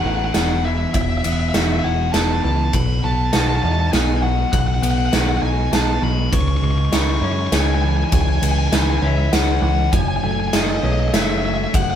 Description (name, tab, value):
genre	post-rock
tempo	100 BPM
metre	3/4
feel	straight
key	unclear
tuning	A4 = 440 Hz
part	smooth overdriven lead guitar	melody	0.0-12.0 s	D#5 to C#6	-24 LUFS	left 2 dB	none
part	clean electric guitar	arpeggios	0.0-12.0 s	E2 to G#4	-24 LUFS	left 1 dB	none
part	deep dub picked electric bass	bass	0.0-12.0 s	E1 to F#2	-20 LUFS	equal	none
part	big rock drum kit	drums	0.3-11.9 s	kick drum, ride cymbal, snare drum	-21 LUFS	right 1 dB	none
room	moderate studio reverb, RT60 0.5 s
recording	band playing live in one room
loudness	-16 LUFS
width	side -9 dB against mid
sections	0.0-12.0 A section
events	none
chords	0.0 Esus2; 2.7 B; 6.3 C#m; 9.9 F#madd9